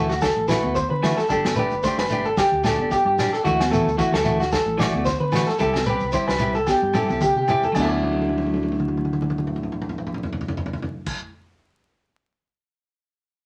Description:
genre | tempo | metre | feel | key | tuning
highlife guitar band | 111 BPM | 4/4 | swing 55% on 16ths | D mixolydian | A4 = 440 Hz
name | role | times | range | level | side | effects
clean electric guitar | accompaniment | 0.0-11.3 s | E3 to G4 | -28 LUFS | equal | none
electric guitar at the edge of break-up | arpeggios | 0.0-11.2 s | D4 to D5 | -25 LUFS | equal | none
hollow-body short-scale fingered electric bass | bass | 0.0-11.1 s | G1 to D3 | -32 LUFS | equal | none
vintage drum kit | drums | 0.1-11.2 s | crash cymbal, kick drum, snare drum, toms | -30 LUFS | equal | none
shekere | percussion | 0.1-11.1 s | none | -34 LUFS | equal | none
agogo bells | percussion | 0.2-11.1 s | none | -34 LUFS | equal | none
congas | percussion | 0.6-11.1 s | none | -34 LUFS | equal | none
room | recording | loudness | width
wet studio reverb, RT60 0.6 s | vinyl crackle | -22 LUFS | mono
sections
0.0-7.8 A section; 7.8-12.1 B section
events
drum fill 6.7-7.8, 8.0-11.1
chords
0.0 Dadd9; 1.3 Gsus2; 3.4 Dadd9; 5.6 C; 7.8 Dadd9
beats
0.21 0.75 | 1.29 1.83 2.37 2.90 | 3.44 3.98 4.52 5.06 | 5.60 6.14 6.68 7.22 | 7.76 8.30 8.84 9.38 | 9.92 10.46 11.01

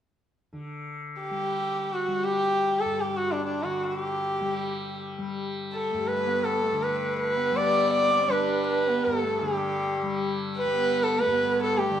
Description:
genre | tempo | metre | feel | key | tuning
indian classical, Hindustani | free time | none | none | G raga hamsadhwani | A4 = 441 Hz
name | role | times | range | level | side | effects
tanpura | drone | 0.5-12.0 s | G2 to G3 | -32 LUFS | left 4 dB | none
rich sarangi | melody | 1.2-12.0 s | D4 to D5 | -25 LUFS | equal | none
warm sarangi | second line | 5.9-12.0 s | G3 to D4 | -32 LUFS | right 4 dB | none
room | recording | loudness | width
moderate recital hall reverb, RT60 1.4 s | minimal, uncompressed stereo recording | -24 LUFS | side -10 dB against mid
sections
0.5-9.4 A section; 9.4-12.0 B section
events
none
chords
none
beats
free time

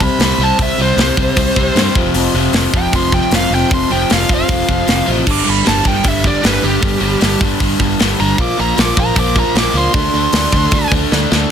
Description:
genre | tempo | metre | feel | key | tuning
punk rock | 154 BPM | 4/4 | straight | unclear | A4 = 440 Hz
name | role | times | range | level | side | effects
high-gain lead guitar | melody | 0.0-10.9 s | G4 to D6 | -18 LUFS | right 3 dB | distortion
overdriven electric guitar | riff | 0.0-11.5 s | F2 to D4 | -16 LUFS | left 1 dB | none
picked electric bass | bass | 0.0-11.4 s | F1 to G2 | -20 LUFS | equal | none
tight metal drum kit | drums | 0.0-11.4 s | crash cymbal, hi-hat, kick drum, snare drum | -16 LUFS | equal | soft clipping on kick
room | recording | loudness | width
little or no reverb | dense, heavily limited modern master | -11 LUFS | side -8 dB against mid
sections
0.0-11.5 A section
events
lead electric guitar solo 0.0-11.5; drum fill 11.1-11.5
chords
0.0 C5; 1.9 F5; 5.3 G5; 8.4 Bb5; 9.9 D5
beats
0.20 | 0.59 0.98 1.36 1.75 | 2.15 2.54 2.92 3.31 | 3.71 4.09 4.48 4.87 | 5.26 5.65 6.04 6.43 | 6.82 7.21 7.60 7.99 | 8.38 8.77 9.16 9.55 | 9.94 10.33 10.72 11.11 | 11.50

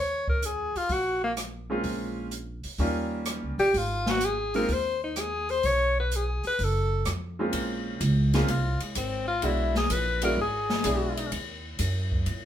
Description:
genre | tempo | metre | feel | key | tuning
jazz, small-group swing and bop | 127 BPM | 4/4 | swing 69% on 8ths | Bb minor | A4 = 440 Hz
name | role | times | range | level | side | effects
bright alto saxophone | melody | 0.0-11.3 s | Ab3 to Db5 | -27 LUFS | left 2 dB | none
upright bass | bass | 0.0-12.4 s | F#1 to Bb2 | -30 LUFS | right 1 dB | none
open jazz drum kit | drums | 0.3-12.4 s | hi-hat, kick drum, ride cymbal, rim click, snare drum | -33 LUFS | left 1 dB | none
bright upright piano | accompaniment | 1.7-11.3 s | G3 to G#4 | -30 LUFS | right 1 dB | none
room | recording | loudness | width
wet studio reverb, RT60 0.6 s | band playing live in one room | -25 LUFS | side -10 dB against mid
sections
0.0-7.5 A section; 7.5-12.4 B section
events
alto saxophone solo 7.5-12.4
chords
0.0 Eb5; 1.8 Bbm7; 2.8 Eb7; 3.7 Ab; 5.6 B5; 7.5 Bbm9; 9.4 E9; 11.3 Ebm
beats
0.42 0.90 1.37 | 1.84 2.32 2.79 3.27 | 3.74 4.21 4.69 5.16 | 5.64 6.11 6.58 7.06 | 7.53 8.01 8.48 8.95 | 9.43 9.90 10.38 10.85 | 11.32 11.79 12.27

